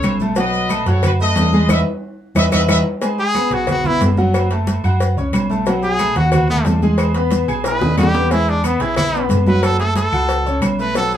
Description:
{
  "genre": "latin, salsa",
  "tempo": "181 BPM",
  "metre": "4/4",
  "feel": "straight",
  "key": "unclear",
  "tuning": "A4 = 441 Hz",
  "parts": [
    { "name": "brilliant trumpet section", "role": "melody", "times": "0.0-2.8 s", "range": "F#4 to E5", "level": "-20 LUFS", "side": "left 2 dB", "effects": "none" },
    { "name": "bright concert grand piano", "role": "accompaniment", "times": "0.0-11.2 s", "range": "F#3 to G#6", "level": "-21 LUFS", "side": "equal", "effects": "none" },
    { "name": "hollow-body short-scale picked electric bass", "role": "bass", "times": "0.0-11.2 s", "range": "F#1 to F#2", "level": "-19 LUFS", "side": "right 1 dB", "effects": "none" },
    { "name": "agogo bells and timbales", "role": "percussion", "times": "0.0-11.1 s", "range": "none", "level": "-27 LUFS", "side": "right 3 dB", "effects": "none" },
    { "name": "claves", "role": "percussion", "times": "0.0-10.8 s", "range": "none", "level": "-28 LUFS", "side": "left 7 dB", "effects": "none" },
    { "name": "congas", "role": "percussion", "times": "0.0-11.2 s", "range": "none", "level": "-21 LUFS", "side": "equal", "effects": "none" },
    { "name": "cowbell and bongos", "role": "percussion", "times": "0.0-11.1 s", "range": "none", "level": "-25 LUFS", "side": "left 5 dB", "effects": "none" },
    { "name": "maracas", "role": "percussion", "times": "0.0-11.2 s", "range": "none", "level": "-37 LUFS", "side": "left 5 dB", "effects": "none" },
    { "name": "bright trumpet", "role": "melody", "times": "3.2-11.2 s", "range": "B3 to B4", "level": "-19 LUFS", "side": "equal", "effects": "none" }
  ],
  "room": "light reverb",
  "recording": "none",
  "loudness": "-14 LUFS",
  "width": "side -10 dB against mid",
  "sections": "0.0-3.0 A section; 3.0-11.2 B section",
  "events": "band accent 1.7-3.0; drum fill 2.4-3.0, 7.6-8.3; trumpet solo 3.0-11.2",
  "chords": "0.4 B7; 1.7 E5; 3.0 F#sus4; 4.3 F#m; 5.7 B7; 7.0 Emaj7; 9.6 F#m"
}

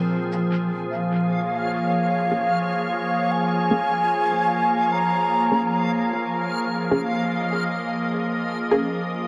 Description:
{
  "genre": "ambient",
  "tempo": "75 BPM",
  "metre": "4/4",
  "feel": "straight",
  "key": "Bb minor",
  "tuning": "A4 = 440 Hz",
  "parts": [
    { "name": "soft additive organ-like pad", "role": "sustained chords", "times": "0.0-9.3 s", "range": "Bb2 to Eb5", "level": "-26 LUFS", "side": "equal", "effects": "ensemble chorus, built-in reverb" },
    { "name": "concert harp", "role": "arpeggios", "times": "0.0-0.9 s", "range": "Bb4", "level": "-47 LUFS", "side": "equal", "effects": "none" },
    { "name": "backwards swelling texture", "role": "texture", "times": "1.3-9.3 s", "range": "F5", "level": "-35 LUFS", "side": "equal", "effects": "built-in reverb" },
    { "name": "filtered dub chord stab", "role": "stabs", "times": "0.5-8.9 s", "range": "Bb3 to Ab4", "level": "-28 LUFS", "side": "equal", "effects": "phaser, lush chorus, dub echo" },
    { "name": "mellow wooden flute", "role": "melody", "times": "0.9-6.1 s", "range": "F5 to Bb5", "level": "-26 LUFS", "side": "equal", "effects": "dub echo" }
  ],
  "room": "moderate echo chamber reverb, RT60 2.6 s",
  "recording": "vinyl crackle",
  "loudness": "-23 LUFS",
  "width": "mono",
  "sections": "0.1-9.3 A section",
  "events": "none",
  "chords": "0.1 Bbm7"
}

